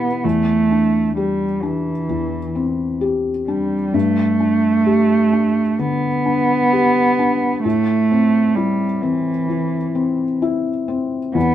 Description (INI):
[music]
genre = neoclassical piano and strings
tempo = 65 BPM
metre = 4/4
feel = rubato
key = unclear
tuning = A4 = 439 Hz
[part]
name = muted cello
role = second line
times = 0.0-11.5 s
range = E3 to B3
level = -17 LUFS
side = right 3 dB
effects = none
[part]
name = felt-muted upright piano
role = accompaniment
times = 0.0-11.5 s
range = E2 to G4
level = -20 LUFS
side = left 5 dB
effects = none
[sound]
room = moderate studio reverb, RT60 0.5 s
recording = band playing live in one room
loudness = -16 LUFS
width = side -11 dB against mid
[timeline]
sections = 0.0-11.5 A section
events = none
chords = 0.2 Cadd9/E; 3.9 Gadd9; 7.6 Am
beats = | 0.24 1.17 2.09 3.02 | 3.94 4.87 5.79 6.72 | 7.64 8.57 9.49 10.42 | 11.35